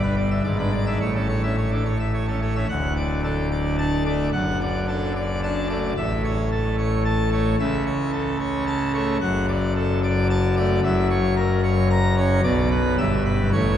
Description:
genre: classical, organ toccata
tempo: 110 BPM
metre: 3/4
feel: straight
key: D major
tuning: A4 = 439 Hz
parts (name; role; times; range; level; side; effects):
- pipe organ, full organ; solo; 0.0-13.8 s; D1 to A#5; -20 LUFS; equal; none
room: wet cathedral reverb, RT60 4.7 s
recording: heard from further back in the room, vinyl crackle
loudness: -20 LUFS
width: side -10 dB against mid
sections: 0.0-2.7 A section; 2.7-13.8 B section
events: none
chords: 0.4 E7/G#; 1.0 A; 2.7 D; 4.3 D/F#; 6.0 A; 7.6 A/C#; 9.2 D/F#; 10.8 F#7; 12.4 Bm; 13.0 Em/G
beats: 0.44 | 1.00 1.57 2.13 | 2.68 3.23 3.78 | 4.33 4.88 5.43 | 5.97 6.51 7.05 | 7.59 8.13 8.67 | 9.21 9.75 10.30 | 10.84 11.37 11.91 | 12.45 12.99 13.54

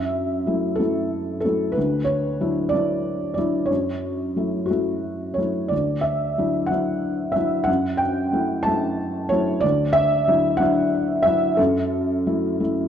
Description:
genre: classical, lyrical solo piano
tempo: 61 BPM (dotted quarters)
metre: 6/8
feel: rubato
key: unclear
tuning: A4 = 438 Hz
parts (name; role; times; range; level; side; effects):
- felt-muted upright piano; solo; 0.0-12.9 s; D2 to A5; -20 LUFS; equal; none
room: moderate scoring stage reverb, RT60 1.9 s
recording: dark, warm production, nothing above 10.9 kHz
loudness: -20 LUFS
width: side -9 dB against mid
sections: 0.0-12.9 A section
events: felt piano fill 12.6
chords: 0.0 F#m7; 1.8 Dadd9; 3.7 F#m7; 5.7 Dadd9; 7.7 F#m7; 9.6 Dadd9; 11.6 F#m7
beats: 0.79 | 1.76 2.73 | 3.71 4.70 | 5.72 6.71 | 7.68 8.66 | 9.63 10.60 | 11.58 12.60

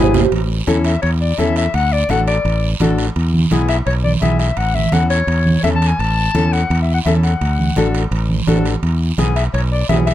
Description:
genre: latin, cumbia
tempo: 169 BPM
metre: 4/4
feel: straight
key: A major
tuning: A4 = 440 Hz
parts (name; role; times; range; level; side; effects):
- flamenco guitar; accompaniment; 0.0-10.1 s; B3 to A4; -19 LUFS; left 4 dB; none
- modern bright fingered electric bass; bass; 0.0-10.1 s; G#1 to E2; -16 LUFS; equal; none
- congas; percussion; 0.1-10.1 s; none; -21 LUFS; right 3 dB; none
- timbales; percussion; 0.1-10.1 s; none; -25 LUFS; right 7 dB; none
- guiro; percussion; 0.2-10.1 s; none; -30 LUFS; right 7 dB; none
- warm clarinet; second line; 0.9-10.1 s; C#5 to A5; -20 LUFS; left 5 dB; none
room: light reverb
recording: close, detailed microphones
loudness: -14 LUFS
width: side -12 dB against mid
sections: 0.3-10.1 A section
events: drum fill 0.0-0.3; clarinet solo 0.3-10.1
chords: 0.3 A; 1.7 D; 3.2 E; 4.6 A; 7.4 D; 8.8 E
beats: | 0.32 0.68 1.03 1.38 | 1.74 2.09 2.45 2.80 | 3.16 3.51 3.87 4.22 | 4.58 4.93 5.28 5.64 | 5.99 6.35 6.70 7.06 | 7.41 7.76 8.12 8.47 | 8.83 9.18 9.54 9.89

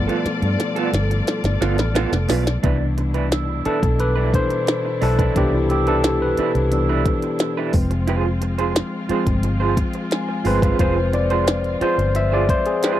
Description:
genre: lush 1970s-style soul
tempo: 88 BPM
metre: 4/4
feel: straight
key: C major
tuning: A4 = 438 Hz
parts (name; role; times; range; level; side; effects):
- barky tine electric piano; accompaniment; 0.0-13.0 s; B2 to E5; -22 LUFS; left 2 dB; overdrive
- rich studio string section; sustained chords; 0.0-13.0 s; B2 to D5; -30 LUFS; left 3 dB; none
- vintage muted fingered electric bass; bass; 0.0-12.5 s; F1 to G2; -21 LUFS; equal; transformer saturation
- electric guitar through a small old amp; riff; 0.1-13.0 s; B3 to C5; -24 LUFS; right 8 dB; tremolo
- minimal click drum kit; drums; 0.1-13.0 s; hi-hat, kick drum, snare drum; -22 LUFS; equal; overdrive
- vibraphone with medium hard mallets; texture; 1.6-10.9 s; Ab5 to F6; -31 LUFS; right 6 dB; none
room: little or no reverb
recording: dry, close 1970s-style studio recording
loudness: -17 LUFS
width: side -12 dB against mid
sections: 0.0-2.6 A section; 2.6-13.0 B section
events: drum fill 0.0-2.6; tine electric piano solo 0.0-2.6, 2.6-13.0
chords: 0.0 G9; 2.6 Cmaj9; 7.7 Fm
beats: 0.59 1.28 1.96 | 2.64 3.32 4.00 4.68 | 5.36 6.04 6.72 7.40 | 8.08 8.76 9.44 10.12 | 10.79 11.47 12.15 12.83

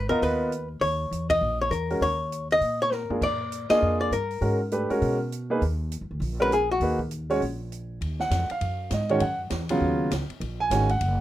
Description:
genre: jazz, small-group swing and bop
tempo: 200 BPM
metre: 4/4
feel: swing 62% on 8ths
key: Eb minor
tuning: A4 = 440 Hz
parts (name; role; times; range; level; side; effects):
- archtop guitar, miked and amplified; melody; 0.0-7.0 s; Gb4 to Eb5; -24 LUFS; left 2 dB; none
- upright bass; bass; 0.0-11.2 s; Gb1 to Cb3; -29 LUFS; equal; none
- warm concert grand piano; accompaniment; 0.1-11.2 s; Db3 to Ab5; -26 LUFS; right 2 dB; none
- open jazz drum kit; drums; 0.2-11.1 s; crash cymbal, hi-hat, kick drum, ride cymbal, snare drum, toms; -37 LUFS; right 1 dB; none
room: light reverb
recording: rough home demo mix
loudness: -23 LUFS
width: side -13 dB against mid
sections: 0.0-8.0 A section; 8.0-11.2 B section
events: band accent 1.3, 3.7; drum fill 2.9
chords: 0.0 Abm (rootless); 0.8 Eb7(no3); 3.2 Bb7; 4.4 Abm7; 5.6 Ebm7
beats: 0.22 0.52 | 0.82 1.12 1.42 1.72 | 2.02 2.32 2.62 2.92 | 3.22 3.52 3.82 4.12 | 4.42 4.72 5.01 5.32 | 5.61 5.91 6.21 6.51 | 6.81 7.11 7.41 7.71 | 8.01 8.31 8.61 8.91 | 9.21 9.51 9.81 10.11 | 10.40 10.70 11.00

